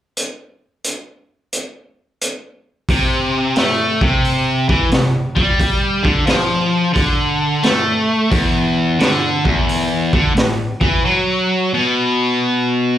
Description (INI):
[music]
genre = blues rock power trio and southern rock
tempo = 88 BPM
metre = 4/4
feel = swing 66% on 8ths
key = unclear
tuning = A4 = 440 Hz
[part]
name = raw garage drum kit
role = drums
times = 0.2-10.9 s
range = hi-hat, kick drum, snare drum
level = -18 LUFS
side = equal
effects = none
[part]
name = distorted electric guitar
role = riff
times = 2.9-13.0 s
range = E2 to A3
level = -15 LUFS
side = equal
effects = overdrive, slapback echo
[sound]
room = light reverb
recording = live gig heard through the venue's PA, club reverb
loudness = -14 LUFS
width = side -11 dB against mid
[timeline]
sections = 0.2-2.9 A section; 2.9-13.0 B section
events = none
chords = none